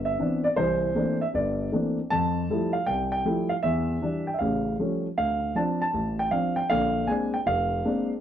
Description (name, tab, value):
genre	jazz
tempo	156 BPM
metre	4/4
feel	swing 65% on 8ths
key	C major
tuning	A4 = 440 Hz
part	dark concert grand piano	solo	0.0-8.1 s	F1 to A5	-24 LUFS	equal	none
room	moderate studio ambience, RT60 0.5 s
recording	lossy compression artefacts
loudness	-24 LUFS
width	side -10 dB against mid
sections	0.0-8.2 A section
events	none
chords	0.0 Cmaj9; 0.6 C13; 2.1 Fmaj9; 3.6 Em7; 4.4 A7b13; 5.2 Dm7; 6.7 Bb9